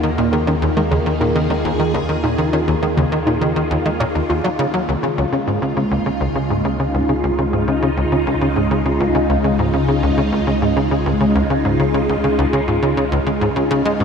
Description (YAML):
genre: ambient, sequencer-driven space music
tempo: 102 BPM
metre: 4/4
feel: straight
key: Db major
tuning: A4 = 441 Hz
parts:
  - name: phased string machine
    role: sustained chords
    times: 0.0-14.0 s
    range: Db3 to Ab4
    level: -18 LUFS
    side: equal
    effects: ensemble chorus, phaser
  - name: wide unison pluck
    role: arpeggios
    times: 0.0-4.7 s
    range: Db3 to Db5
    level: -24 LUFS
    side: equal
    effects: auto-pan, ping-pong delay
  - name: tight sequencer bass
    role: riff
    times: 0.0-14.0 s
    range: Db2 to Ab3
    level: -19 LUFS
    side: equal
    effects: wide subtle chorus, ping-pong delay
  - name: warm sub bass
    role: bass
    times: 0.0-14.0 s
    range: Db2 to Eb2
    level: -26 LUFS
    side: equal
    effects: none
room: moderate huge ambient reverb, RT60 8.3 s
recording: dreamy mix soaked in reverb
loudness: -15 LUFS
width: side -6 dB against mid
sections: 0.0-4.9 A section; 4.9-14.0 B section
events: none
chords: 0.0 Ebm; 4.9 Db